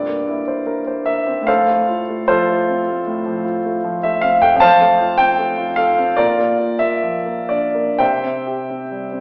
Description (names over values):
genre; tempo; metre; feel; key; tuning
classical, romantic character piece for solo piano; 59-78 BPM; 4/4; rubato; F major; A4 = 439 Hz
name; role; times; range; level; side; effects
warm concert grand piano; solo; 0.0-9.2 s; F2 to A5; -17 LUFS; equal; none
room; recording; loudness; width
wet recital hall reverb, RT60 1.3 s; recorded in a church or concert hall, AM radio sound; -17 LUFS; mono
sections
0.0-9.2 A section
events
none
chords
0.0 C7/G; 1.5 F/A; 4.6 F; 6.2 Bb; 8.0 C